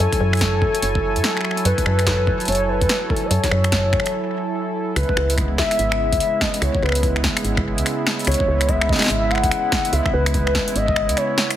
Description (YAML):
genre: IDM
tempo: 145 BPM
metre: 4/4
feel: swing 62% on 16ths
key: C# minor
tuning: A4 = 439 Hz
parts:
  - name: warbly nostalgic lead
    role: melody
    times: 0.0-11.5 s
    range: A4 to F#5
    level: -22 LUFS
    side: left 1 dB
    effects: chorus, tremolo, vintage 12-bit sampler grit, tape echo
  - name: warm analog pad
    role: sustained chords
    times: 0.0-11.6 s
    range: C#3 to G#5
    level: -25 LUFS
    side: right 2 dB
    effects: chorus
  - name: woody FM bass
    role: bass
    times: 0.0-11.1 s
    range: F#1 to F#2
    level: -21 LUFS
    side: equal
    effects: none
  - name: electro analog drum machine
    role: drums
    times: 0.0-11.6 s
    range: finger snaps, hi-hat, snare drum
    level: -23 LUFS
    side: equal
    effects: none
  - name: pulsing gated texture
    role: texture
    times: 0.0-4.1 s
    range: C#5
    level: -34 LUFS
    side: right 1 dB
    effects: chorus, built-in reverb
  - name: electronic kick drum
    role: drums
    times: 0.1-10.9 s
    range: none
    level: -24 LUFS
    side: equal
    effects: overdrive
room: light reverb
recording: heavily compressed radio sound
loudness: -17 LUFS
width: side -11 dB against mid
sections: 0.0-5.0 A section; 5.0-11.6 B section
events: break 4.1-5.0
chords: 0.0 F#m9; 5.0 C#m7